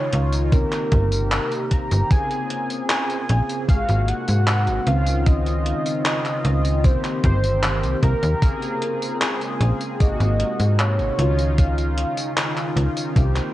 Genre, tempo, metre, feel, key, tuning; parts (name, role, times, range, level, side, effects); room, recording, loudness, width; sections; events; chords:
vaporwave; 76 BPM; 4/4; straight; A4 = 437 Hz
warm velvety synth lead; melody; 0.0-12.3 s; Ab4 to Bb5; -27 LUFS; right 1 dB; chorus, tape echo
mellow synth brass; accompaniment; 0.0-13.5 s; C3 to Ab4; -27 LUFS; left 1 dB; wide subtle chorus, vintage 12-bit sampler grit
warbly tape-like pad; sustained chords; 0.0-13.5 s; C3 to Eb5; -33 LUFS; left 1 dB; chorus, built-in reverb
slap-like FM bass; bass; 0.1-13.4 s; G1 to Ab2; -20 LUFS; equal
gated 80s digital drum machine; drums; 0.1-13.5 s; handclaps, hi-hat, tambourine; -26 LUFS; equal; gated reverb, overdrive, vintage 12-bit sampler grit
electronic kick drum; drums; 0.5-13.3 s; -18 LUFS; equal; overdrive, vintage 12-bit sampler grit
digital ambience; cassette tape; -18 LUFS; side -15 dB against mid
0.0-13.5 A section
0.0 Dbadd9; 0.5 Cm7; 2.1 Bbm9; 3.7 Ab9; 4.9 Dbmaj9; 6.8 Cm7; 8.4 Bbm9; 10.0 Ab9; 11.2 Dbadd9